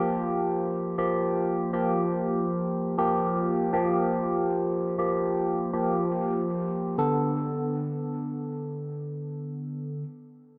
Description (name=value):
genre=house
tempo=free time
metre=none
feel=none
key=unclear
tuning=A4 = 440 Hz
part: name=barky tine electric piano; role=stabs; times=0.0-10.0 s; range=D3 to A4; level=-28 LUFS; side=equal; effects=phaser, low-pass filter, dub echo
room=moderate lush hall reverb, RT60 2.5 s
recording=dark, warm production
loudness=-28 LUFS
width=mono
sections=0.0-7.0 A section; 7.0-10.6 B section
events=filter sweep on tine electric piano 0.0-7.0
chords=0.0 Gm7; 7.0 Bm7